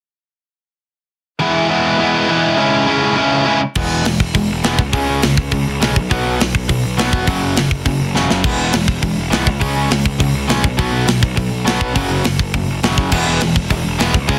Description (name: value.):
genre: punk rock.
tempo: 205 BPM.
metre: 4/4.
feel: straight.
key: E major.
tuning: A4 = 440 Hz.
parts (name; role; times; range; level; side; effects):
crunchy overdriven guitar; riff; 1.4-14.4 s; F#2 to E4; -19 LUFS; equal; none.
overdriven electric guitar; riff; 1.4-3.6, 13.1-14.4 s; C#3 to E4; -21 LUFS; equal; none.
fuzz picked electric bass; bass; 3.8-14.4 s; E1 to C#2; -23 LUFS; equal; overdrive.
tight metal drum kit; drums; 3.8-14.4 s; crash cymbal, hi-hat, kick drum, snare drum; -20 LUFS; equal; soft clipping on kick.
room: light reverb.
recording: dense, heavily limited modern master.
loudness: -16 LUFS.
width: mono.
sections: 1.4-3.8 A section; 3.8-14.4 B section.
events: drum fill 8.2.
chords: 1.4 E; 2.4 C#m; 3.6 N.C.; 3.8 E; 4.8 C#5; 6.0 B5; 7.3 F#5; 8.4 E; 9.5 C#5; 10.6 B5; 12.0 F#5; 13.1 E.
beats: | 1.41 1.70 2.00 2.29 | 2.58 2.88 3.17 3.46 | 3.76 4.05 4.34 4.64 | 4.93 5.22 5.52 5.81 | 6.10 6.40 6.69 6.98 | 7.28 7.57 7.86 8.15 | 8.45 8.74 9.03 9.33 | 9.62 9.91 10.20 10.49 | 10.79 11.08 11.37 11.66 | 11.96 12.25 12.54 12.83 | 13.12 13.41 13.71 14.00 | 14.29.